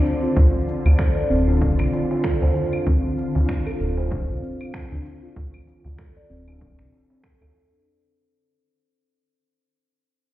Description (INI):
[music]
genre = organic downtempo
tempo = 96 BPM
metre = 4/4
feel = swing 57% on 16ths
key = D minor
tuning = A4 = 441 Hz
[part]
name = granular cloud pad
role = sustained chords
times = 0.0-7.9 s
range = D3 to D5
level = -28 LUFS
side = right 1 dB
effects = built-in reverb, sidechain pumping
[part]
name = steel tongue drum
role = arpeggios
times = 0.0-7.9 s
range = C4 to D5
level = -26 LUFS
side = left 1 dB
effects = ping-pong delay
[part]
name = quartz singing bowl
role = texture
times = 0.0-7.9 s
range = C5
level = -36 LUFS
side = left 2 dB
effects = none
[part]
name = electronic shaker, claves and finger snaps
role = drums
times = 0.1-7.8 s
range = none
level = -39 LUFS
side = equal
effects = overdrive
[part]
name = round analog bass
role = bass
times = 0.4-7.5 s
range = D1 to D2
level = -19 LUFS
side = equal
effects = tube saturation, sidechain pumping
[part]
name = electronic kick drum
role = drums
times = 0.4-7.4 s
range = none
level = -24 LUFS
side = equal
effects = overdrive
[part]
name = darbuka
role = percussion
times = 0.7-7.5 s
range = none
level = -30 LUFS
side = equal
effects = none
[sound]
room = light reverb, digital ambience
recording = heard muffled through a wall, stone room reverb, EQ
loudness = -18 LUFS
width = side -15 dB against mid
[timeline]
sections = 0.0-7.9 A section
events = fade-out 0.0-7.9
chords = 0.0 Dm7